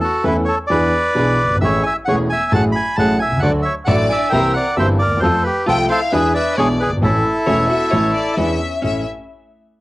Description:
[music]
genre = tango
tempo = 133 BPM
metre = 4/4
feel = rubato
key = A major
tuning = A4 = 438 Hz
[part]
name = bandoneon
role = melody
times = 0.0-8.4 s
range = E4 to B5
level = -18 LUFS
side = equal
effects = cassette tape
[part]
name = dark concert grand piano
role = accompaniment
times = 0.2-9.0 s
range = E1 to A4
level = -18 LUFS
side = equal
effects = cassette tape
[part]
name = warm studio string section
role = stabs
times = 0.2-9.0 s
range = E3 to A4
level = -27 LUFS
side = right 2 dB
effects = none
[part]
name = clear chamber violin section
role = second line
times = 3.9-9.0 s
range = Bb4 to G5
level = -22 LUFS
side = left 2 dB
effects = cassette tape
[part]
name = vintage hollow-body jazz guitar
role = second line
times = 3.9-9.0 s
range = C4 to F#4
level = -25 LUFS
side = left 1 dB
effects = cassette tape
[sound]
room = moderate spring reverb, RT60 1.1 s, small room ambience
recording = home recording on cassette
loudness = -14 LUFS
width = side -19 dB against mid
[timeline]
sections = 0.0-8.8 A section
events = none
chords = 0.0 A; 0.7 E7; 1.6 Amaj7; 2.5 F#madd9/A; 3.4 D; 4.3 C7; 5.2 F; 6.1 E7; 7.0 A; 8.4 E7; 8.8 A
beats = 0.25 0.70 1.16 | 1.62 2.07 2.52 2.98 | 3.42 3.88 4.32 4.77 | 5.22 5.67 6.12 6.57 | 7.02 7.47 7.92 8.38 | 8.84

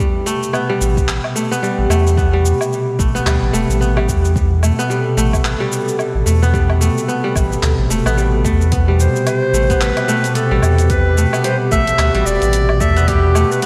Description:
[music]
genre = organic downtempo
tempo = 110 BPM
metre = 4/4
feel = swing 59% on 16ths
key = A minor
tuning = A4 = 440 Hz
[part]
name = warbly tape-like pad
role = sustained chords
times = 0.4-13.7 s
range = B2 to F#5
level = -23 LUFS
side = equal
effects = chorus, built-in reverb, sidechain pumping
[part]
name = kora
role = arpeggios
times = 0.0-13.7 s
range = G3 to B3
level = -22 LUFS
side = equal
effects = analog delay
[part]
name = dusty soul sampler-style drum kit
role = drums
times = 0.3-13.7 s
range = cabasa, handclaps, hi-hat, woodblock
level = -27 LUFS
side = equal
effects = studio reverb
[part]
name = warm sub bass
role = bass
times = 0.8-13.4 s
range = E1 to E2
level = -18 LUFS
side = equal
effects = sidechain pumping
[part]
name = electronic kick drum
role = drums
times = 1.0-13.2 s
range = none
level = -22 LUFS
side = equal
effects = studio reverb
[part]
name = bright clarinet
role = melody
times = 9.0-13.7 s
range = G4 to E5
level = -21 LUFS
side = equal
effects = analog delay
[sound]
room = moderate lush hall reverb, RT60 2.6 s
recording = dreamy mix soaked in reverb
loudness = -15 LUFS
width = mono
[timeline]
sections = 0.0-13.7 A section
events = none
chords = 0.0 Am9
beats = 0.54 1.08 1.63 | 2.17 2.72 3.26 3.81 | 4.36 4.90 5.45 5.99 | 6.54 7.08 7.63 8.17 | 8.72 9.26 9.81 10.36 | 10.90 11.45 11.99 12.54 | 13.08 13.63

